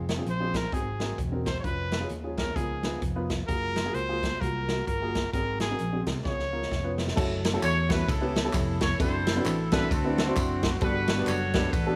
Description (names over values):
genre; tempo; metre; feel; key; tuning
uptempo gospel; 130 BPM; 4/4; swing 60% on 8ths; Db major, D major from 7.2 s; A4 = 440 Hz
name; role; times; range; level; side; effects
warm upright piano; accompaniment; 0.0-12.0 s; G2 to C5; -34 LUFS; equal; none
mellow French horn section; sustained chords; 0.0-7.2 s; F3 to F4; -45 LUFS; equal; none
fingered electric bass; bass; 0.0-12.0 s; Fb1 to E2; -34 LUFS; equal; none
swinging big-band drum kit; drums; 0.1-11.9 s; crash cymbal, hi-hat, kick drum, ride cymbal, snare drum; -32 LUFS; equal; none
brilliant trumpet; melody; 0.3-6.9 s; Ab4 to Db5; -35 LUFS; equal; none
tambourine and handclaps; percussion; 7.2-11.9 s; none; -42 LUFS; equal; none
clear horn section; melody; 7.6-12.0 s; C4 to C#5; -33 LUFS; equal; none
room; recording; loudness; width
light reverb; none; -28 LUFS; mono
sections
0.0-7.2 A section; 7.2-12.0 B section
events
drum fill 6.3-7.2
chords
0.0 Fm7; 0.7 Ab7; 1.6 Db9/F; 2.6 Db13; 3.5 Gbmaj9; 5.3 Ab7; 6.3 Db7; 7.2 F#m7; 8.1 C#m7b5; 9.0 D9/F#; 9.9 D13; 10.8 Gmaj9